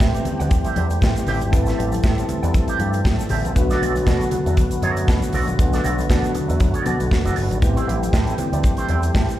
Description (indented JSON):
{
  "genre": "disco",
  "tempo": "118 BPM",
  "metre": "4/4",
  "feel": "swing 56% on 16ths",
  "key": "A dorian",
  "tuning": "A4 = 440 Hz",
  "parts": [
    { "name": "electric guitar with an envelope filter", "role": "accompaniment", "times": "0.0-9.3 s", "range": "E4 to F#5", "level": "-29 LUFS", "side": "right 5 dB", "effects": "wah, lush chorus, slapback echo" },
    { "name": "mellow tine electric piano", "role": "accompaniment", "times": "0.0-9.4 s", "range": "A3 to B4", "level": "-28 LUFS", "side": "left 2 dB", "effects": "medium stereo tremolo, slapback echo" },
    { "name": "tonewheel organ", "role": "sustained chords", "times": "0.0-9.4 s", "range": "D3 to A4", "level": "-25 LUFS", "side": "equal", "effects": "chorus vibrato, lush chorus" },
    { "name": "picked electric bass with an envelope filter", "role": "bass", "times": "0.0-9.3 s", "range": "F#1 to B2", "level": "-22 LUFS", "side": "equal", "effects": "none" },
    { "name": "modern studio drum kit", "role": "drums", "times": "0.0-9.4 s", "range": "hi-hat, kick drum, snare drum", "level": "-20 LUFS", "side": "equal", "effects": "none" },
    { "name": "congas", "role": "percussion", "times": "0.0-9.3 s", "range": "none", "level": "-30 LUFS", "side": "left 3 dB", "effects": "none" },
    { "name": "egg shaker", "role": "percussion", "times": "0.0-9.4 s", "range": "none", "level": "-42 LUFS", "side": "left 3 dB", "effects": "none" }
  ],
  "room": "small room ambience",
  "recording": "live gig heard through the venue's PA, club reverb",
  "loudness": "-17 LUFS",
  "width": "side -13 dB against mid",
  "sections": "0.0-9.4 A section",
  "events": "none",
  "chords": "0.0 Am7; 3.6 Bm7; 7.6 Am7"
}